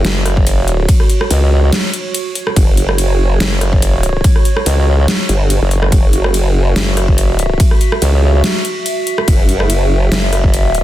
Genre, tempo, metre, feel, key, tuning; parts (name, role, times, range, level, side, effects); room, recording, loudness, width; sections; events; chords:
heavy wobble dubstep; 143 BPM; 4/4; swing 54% on 16ths, half-time; A4 = 440 Hz
formant-sweep wobble bass; bass; 0.0, 2.6-6.7, 9.3-10.1 s; F#1 to G1; -13 LUFS; equal; chorus, overdrive
formant-sweep wobble bass; bass; 0.0-10.8 s; F#1 to C#2; -13 LUFS; equal; chorus, overdrive
dubstep drum kit; drums; 0.0-10.8 s; hi-hat, ride cymbal, rim click, snare drum; -19 LUFS; equal; overdrive
warbly tape-like pad; texture; 0.0-10.8 s; F#4 to E5; -21 LUFS; right 2 dB; chorus, built-in reverb, sidechain pumping
electronic kick drum; drums; 0.4-10.5 s; -12 LUFS; equal; overdrive
little or no reverb; dense, heavily limited modern master; -11 LUFS; side -14 dB against mid
0.0-10.8 A section
0.0 F#5